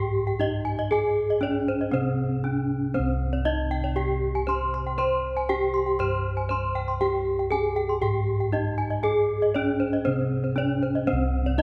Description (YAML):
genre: Balinese gamelan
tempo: 118 BPM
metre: 4/4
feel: straight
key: C pelog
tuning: A4 = 440 Hz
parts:
  - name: gamelan-type bronze metallophone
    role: melody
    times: 0.0-11.6 s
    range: C4 to C5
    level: -29 LUFS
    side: equal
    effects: none
  - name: gamelan-type bronze metallophone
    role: arpeggios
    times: 0.0-11.6 s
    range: C5 to C6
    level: -32 LUFS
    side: equal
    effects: none
  - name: gamelan-type bossed gongs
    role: bass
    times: 0.0-11.6 s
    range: C2 to C5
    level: -29 LUFS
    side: equal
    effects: none
room: moderate recital hall reverb, RT60 1.7 s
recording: none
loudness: -25 LUFS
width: mono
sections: 0.0-11.1 A section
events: none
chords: none